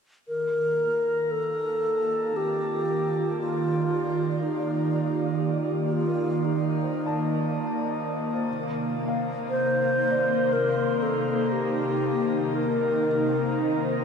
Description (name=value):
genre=ambient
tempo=59 BPM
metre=4/4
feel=straight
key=Eb lydian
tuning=A4 = 440 Hz
part: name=mellow hollow alto flute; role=melody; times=0.3-14.0 s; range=Eb4 to C5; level=-26 LUFS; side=equal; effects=ping-pong delay
part: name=warm analog pad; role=sustained chords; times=0.3-14.0 s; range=C3 to D5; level=-28 LUFS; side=right 1 dB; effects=chorus
part: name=bowed-like drone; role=drone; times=1.0-14.0 s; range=Eb3 to Bb3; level=-32 LUFS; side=left 1 dB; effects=built-in reverb
part: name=felt-muted upright piano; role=arpeggios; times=0.9-14.0 s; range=Bb3 to A5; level=-38 LUFS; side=left 1 dB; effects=ping-pong delay
room=wet shimmer reverb, RT60 6.1 s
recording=cassette tape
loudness=-23 LUFS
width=side -6 dB against mid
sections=0.3-14.0 A section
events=fade-in on felt piano 0.3-14.0; filter sweep on analog synth pad 0.3-14.0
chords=0.3 Ebmaj7; 8.5 Cm7